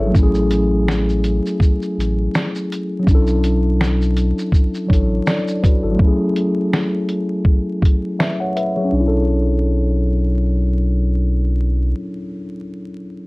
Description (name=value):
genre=lo-fi hip hop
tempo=82 BPM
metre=4/4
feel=swing 55% on 16ths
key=B dorian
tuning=A4 = 441 Hz
part: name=mellow tine electric piano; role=accompaniment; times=0.0-13.3 s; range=F#3 to F#5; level=-19 LUFS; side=left 1 dB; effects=medium stereo tremolo, cassette tape, low-pass filter
part: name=sub bass with octave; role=bass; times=0.0-11.9 s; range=G#1 to B1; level=-18 LUFS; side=equal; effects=none
part: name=lo-fi sampler-style drum kit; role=drums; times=0.1-8.7 s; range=finger snaps, hi-hat, kick drum, shaker, snare drum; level=-16 LUFS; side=equal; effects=none
room=light reverb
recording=dark, warm production, vinyl crackle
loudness=-15 LUFS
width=side -24 dB against mid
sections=0.0-8.9 A section; 8.9-11.8 B section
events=filter sweep on tine electric piano 0.0-8.9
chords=0.1 F#m7/A; 3.1 Bm11; 6.0 F#m7; 8.9 Bm11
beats=| 0.14 0.87 1.60 2.33 | 3.06 3.80 4.53 5.26 | 5.99 6.72 7.45 8.19 | 8.92 9.65 10.38 11.11